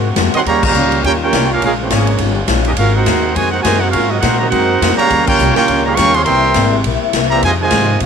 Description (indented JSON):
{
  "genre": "jazz, big band swing",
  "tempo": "206 BPM",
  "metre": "4/4",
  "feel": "swing 60% on 8ths",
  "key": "Eb major",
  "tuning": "A4 = 442 Hz",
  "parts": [
    { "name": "picked old ladder-braced acoustic guitar", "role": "accompaniment", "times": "0.0-8.1 s", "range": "Bb2 to Bb4", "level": "-22 LUFS", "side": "left 16 dB", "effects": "none" },
    { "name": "clear trombone section", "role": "sustained chords", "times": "0.0-8.1 s", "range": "C3 to Gb4", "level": "-25 LUFS", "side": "left 2 dB", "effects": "none" },
    { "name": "upright bass", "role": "bass", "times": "0.0-8.1 s", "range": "G1 to Bb2", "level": "-18 LUFS", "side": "left 1 dB", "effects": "none" },
    { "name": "swinging big-band drum kit", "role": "drums", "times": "0.2-8.1 s", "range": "crash cymbal, hi-hat, kick drum, ride cymbal, snare drum", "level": "-19 LUFS", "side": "left 1 dB", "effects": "none" },
    { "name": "mellow trombone section", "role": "second line", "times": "0.3-8.1 s", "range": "C3 to G4", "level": "-19 LUFS", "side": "right 11 dB", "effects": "none" },
    { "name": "clear trumpet section", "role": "melody", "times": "0.4-8.0 s", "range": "Bb3 to Db6", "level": "-15 LUFS", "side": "right 1 dB", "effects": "none" }
  ],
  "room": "moderate spring reverb, RT60 1.6 s, studio reverb",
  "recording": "1960s-style stereo with parts hard left and right",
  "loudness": "-11 LUFS",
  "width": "side -7 dB against mid",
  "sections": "0.0-8.1 A section",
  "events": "band accent 0.6, 5.2",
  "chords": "0.4 Eb9; 1.6 Bbm7; 2.2 Eb9; 2.8 Ab9; 5.1 Eb9; 6.3 C7; 7.4 Fm7"
}